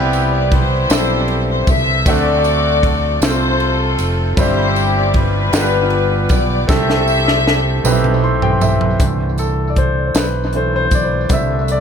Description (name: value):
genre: slow gospel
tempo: 52 BPM (dotted quarters)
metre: 6/8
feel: straight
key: C major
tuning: A4 = 441 Hz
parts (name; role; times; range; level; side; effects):
- warm studio string section; melody; 0.0-8.2 s; D4 to E5; -18 LUFS; left 3 dB; analog delay
- clear baby grand piano; accompaniment; 0.0-11.8 s; G2 to C6; -18 LUFS; equal; analog delay
- fingered electric bass; bass; 0.0-11.8 s; F1 to D2; -19 LUFS; equal; none
- crisp fusion drum kit; drums; 0.1-11.8 s; hi-hat, kick drum, ride cymbal, snare drum, toms; -18 LUFS; right 1 dB; none
- tambourine; percussion; 0.1-11.8 s; none; -29 LUFS; right 8 dB; none
room: light reverb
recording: echo-heavy mix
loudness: -13 LUFS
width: side -7 dB against mid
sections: 0.0-9.0 A section; 9.0-11.8 B section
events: drum fill 6.7-9.0; grand piano fill 7.8-9.0; grand piano solo 9.0-11.8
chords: 0.0 Cmaj7; 2.1 D7; 3.2 F/C; 4.4 C/G; 5.5 G7; 6.7 C6; 9.0 C69; 11.3 Am11